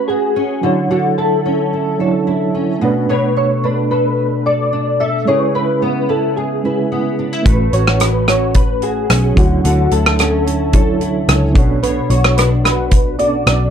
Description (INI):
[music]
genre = indie pop, bedroom pop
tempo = 110 BPM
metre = 4/4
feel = straight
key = unclear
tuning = A4 = 439 Hz
[part]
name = soft electric-piano-like synth keys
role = melody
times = 0.0-13.7 s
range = F#4 to E5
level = -18 LUFS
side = left 1 dB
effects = ensemble chorus, tape echo, plate reverb
[part]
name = flamenco guitar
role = accompaniment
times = 0.0-13.7 s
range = B2 to C#5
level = -20 LUFS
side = left 2 dB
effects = analog chorus, warbly pitch drift, plate reverb
[part]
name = reed electric piano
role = accompaniment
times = 0.0-13.7 s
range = F#3 to D5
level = -20 LUFS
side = right 5 dB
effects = fast tremolo, cassette tape, plate reverb
[part]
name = vintage muted picked electric bass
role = bass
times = 7.5-13.7 s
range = A1 to D2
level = -17 LUFS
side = equal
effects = none
[part]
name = loose indie drum kit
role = drums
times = 7.5-13.6 s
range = hi-hat, kick drum, rim click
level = -14 LUFS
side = equal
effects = none
[sound]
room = moderate small room reverb, RT60 0.5 s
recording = dark, warm production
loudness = -12 LUFS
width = side -8 dB against mid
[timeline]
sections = 0.0-13.7 A section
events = none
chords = 0.0 A69; 0.6 Dmaj9; 2.8 Bm9; 5.3 C#m7; 7.5 A69; 9.4 Dmaj9; 11.6 Bm9